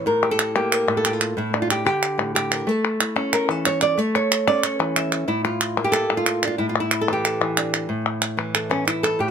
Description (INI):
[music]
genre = flamenco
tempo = 184 BPM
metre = 4/4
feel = straight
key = A phrygian dominant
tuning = A4 = 438 Hz
[part]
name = flamenco guitar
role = melody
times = 0.0-9.3 s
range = A2 to E5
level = -21 LUFS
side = equal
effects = none
[part]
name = palmas hand claps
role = percussion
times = 0.2-9.2 s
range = none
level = -23 LUFS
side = left 1 dB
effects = none
[sound]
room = light reverb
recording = close, detailed microphones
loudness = -19 LUFS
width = side -7 dB against mid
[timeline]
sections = 0.0-7.9 A section; 7.9-9.3 B section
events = nylon-string guitar solo 7.9-9.3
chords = 0.1 Bb6/A; 2.7 A; 5.3 Bb5/A; 6.6 Asus4; 7.9 A5